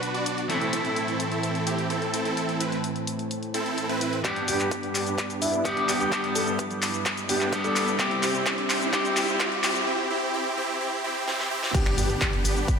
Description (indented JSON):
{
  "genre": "EDM, festival progressive house",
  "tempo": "128 BPM",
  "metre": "4/4",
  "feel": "straight",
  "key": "G major",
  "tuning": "A4 = 440 Hz",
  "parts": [
    { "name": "electric guitar at the edge of break-up", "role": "accompaniment", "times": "0.0-9.9 s", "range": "D3 to G4", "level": "-30 LUFS", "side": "left 2 dB", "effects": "sidechain pumping, ping-pong delay" },
    { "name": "lush unison pad", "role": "sustained chords", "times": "0.0-12.8 s", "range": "G2 to B5", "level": "-33 LUFS", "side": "right 1 dB", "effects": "chorus, sidechain pumping" },
    { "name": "supersaw chords", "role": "riff", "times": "0.0-12.8 s", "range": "B3 to D5", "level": "-28 LUFS", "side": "right 1 dB", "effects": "sidechain pumping, low-pass filter, ping-pong delay" },
    { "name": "big-room dance drum kit", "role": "drums", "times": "0.0-12.8 s", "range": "crash cymbal, finger snaps, handclaps, hi-hat, shaker, snare drum", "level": "-29 LUFS", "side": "left 1 dB", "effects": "high-pass filter on hats, high-pass filter on snare, high-pass filter on perc, high-pass filter on cymbals" },
    { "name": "dark grand piano", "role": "arpeggios", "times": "4.2-12.8 s", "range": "E4 to A4", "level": "-31 LUFS", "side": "equal", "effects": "sidechain pumping, low-pass filter, ping-pong delay" },
    { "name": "electronic kick drum", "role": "drums", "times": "4.2-12.8 s", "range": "none", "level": "-26 LUFS", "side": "equal", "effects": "high-pass filter on kick" },
    { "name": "riser and impact", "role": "sound effects", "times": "5.8-12.8 s", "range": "none", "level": "-34 LUFS", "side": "right 1 dB", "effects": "none" },
    { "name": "detuned saw bass", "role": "bass", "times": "12.0-12.6 s", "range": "G1", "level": "-28 LUFS", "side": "equal", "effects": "sidechain pumping" }
  ],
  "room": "moderate lush hall reverb, RT60 1.9 s",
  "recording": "high-pass filter",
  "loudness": "-23 LUFS",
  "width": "side -6 dB against mid",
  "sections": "0.0-4.2 A section; 4.2-11.7 B section; 11.7-12.8 C section",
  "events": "build-up 4.2-11.7; drum fill 4.2-9.9, 11.3-11.7; filter sweep on supersaw synth 4.2-11.7; riser 5.8-9.9; break 9.9-11.7; drop 11.7-12.8; impact 11.7-12.8",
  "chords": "0.5 Am; 4.2 G; 8.0 C; 11.7 G",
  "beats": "0.03 | 0.49 0.96 1.43 1.90 | 2.37 2.84 3.31 3.78 | 4.25 4.71 5.18 5.65 | 6.12 6.59 7.06 7.53 | 8.00 8.46 8.93 9.40 | 9.87 10.34 10.81 11.28 | 11.74 12.21 12.68"
}